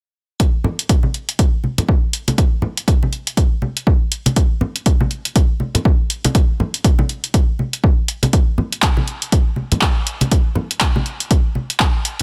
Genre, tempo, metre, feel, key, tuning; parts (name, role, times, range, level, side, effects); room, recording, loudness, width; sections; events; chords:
house; 121 BPM; 4/4; swing 58% on 16ths
electronic kick drum; drums; 0.4-11.9 s; -17 LUFS; equal
punchy analog drum machine; drums; 0.4-12.2 s; handclaps, hi-hat; -22 LUFS; equal
congas; percussion; 0.6-12.2 s; -21 LUFS; equal
little or no reverb; -17 LUFS; mono
0.4-12.2 A section